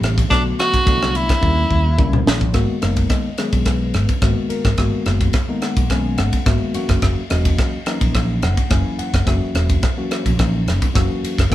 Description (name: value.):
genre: electric jazz fusion.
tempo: 107 BPM.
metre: 4/4.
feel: straight.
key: G# minor.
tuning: A4 = 440 Hz.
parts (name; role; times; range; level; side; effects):
edgy tenor saxophone; melody; 0.0-2.3 s; D4 to F#4; -19 LUFS; right 1 dB; none.
tine electric piano; accompaniment; 0.0-11.5 s; C3 to G#5; -23 LUFS; left 2 dB; none.
mellow fretless electric bass; bass; 0.0-11.5 s; E1 to D#2; -20 LUFS; equal; none.
tight funk drum kit; drums; 0.0-11.5 s; kick drum, ride cymbal, rim click, snare drum, toms; -19 LUFS; equal; none.
room: light reverb.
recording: band playing live in one room.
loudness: -15 LUFS.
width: side -14 dB against mid.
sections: 0.0-2.5 A section; 2.5-11.5 B section.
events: drum fill 1.4-2.5.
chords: 0.3 Bm7; 1.4 D#7b9; 2.5 G#m9; 6.7 F#7.